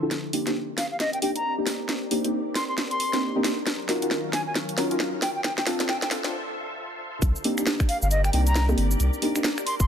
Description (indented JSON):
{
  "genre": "UK garage, two-step garage",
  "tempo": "135 BPM",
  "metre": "4/4",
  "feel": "swing 61% on 16ths",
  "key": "C dorian",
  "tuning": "A4 = 440 Hz",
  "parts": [
    { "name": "soft string machine", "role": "sustained chords", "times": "0.0-9.9 s", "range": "D3 to F5", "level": "-35 LUFS", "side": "left 1 dB", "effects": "ensemble chorus, sidechain pumping" },
    { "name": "deep mellow chord stab", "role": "stabs", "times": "0.0-9.5 s", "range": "Bb3 to Bb4", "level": "-28 LUFS", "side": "equal", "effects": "chorus, dub echo" },
    { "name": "garage drum kit", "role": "drums", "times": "0.1-9.9 s", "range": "bongos, finger snaps, hi-hat, shaker, snare drum", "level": "-28 LUFS", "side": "equal", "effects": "low-pass filter on snare, low-pass filter on hats, low-pass filter on perc" },
    { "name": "bright wooden flute", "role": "melody", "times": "0.8-9.9 s", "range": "Eb5 to C6", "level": "-30 LUFS", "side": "left 1 dB", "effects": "low-pass filter, dub echo" },
    { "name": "saturated sub bass", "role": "bass", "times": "7.2-9.9 s", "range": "G1 to C2", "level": "-22 LUFS", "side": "equal", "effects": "sidechain pumping" },
    { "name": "electronic kick drum", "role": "drums", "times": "7.2-9.9 s", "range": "none", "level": "-22 LUFS", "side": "equal", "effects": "none" }
  ],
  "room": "light reverb",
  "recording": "high-pass filter",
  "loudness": "-23 LUFS",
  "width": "side -8 dB against mid",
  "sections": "0.1-7.2 A section; 7.2-9.9 B section",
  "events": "build-up 0.1-7.2; drum fill 0.1-6.3; filter sweep on string machine 0.1-7.2; break 6.3-7.2; drop 7.2-9.9",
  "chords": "0.1 Cm9; 3.7 Ebm9; 5.2 Dm9; 7.2 Cm9"
}